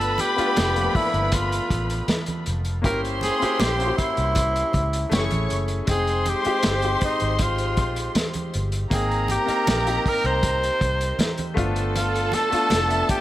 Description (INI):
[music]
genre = lush 1970s-style soul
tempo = 79 BPM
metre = 4/4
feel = straight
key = unclear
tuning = A4 = 439 Hz
[part]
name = breathy tenor saxophone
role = melody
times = 0.0-13.2 s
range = Eb4 to C5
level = -25 LUFS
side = equal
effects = tape echo
[part]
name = warm studio violin section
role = second line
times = 0.0-13.2 s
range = A4 to Db6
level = -28 LUFS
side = equal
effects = none
[part]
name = clear grand piano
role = accompaniment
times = 0.0-13.2 s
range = F3 to G5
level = -29 LUFS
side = left 2 dB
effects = none
[part]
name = vintage muted fingered electric bass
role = bass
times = 0.0-13.0 s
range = F1 to Db2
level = -26 LUFS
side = equal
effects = none
[part]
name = vintage drum kit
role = drums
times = 0.0-13.2 s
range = hi-hat, kick drum, snare drum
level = -26 LUFS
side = equal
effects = none
[part]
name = congas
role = percussion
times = 0.2-12.9 s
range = none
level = -31 LUFS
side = right 3 dB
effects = none
[sound]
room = light reverb, studio ambience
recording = none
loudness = -20 LUFS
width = side -14 dB against mid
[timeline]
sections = 0.0-13.2 A section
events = none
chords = 0.0 G7; 2.8 C7b9/G; 5.1 Gbm9; 5.9 Fm9; 8.9 Abmaj9; 11.6 G7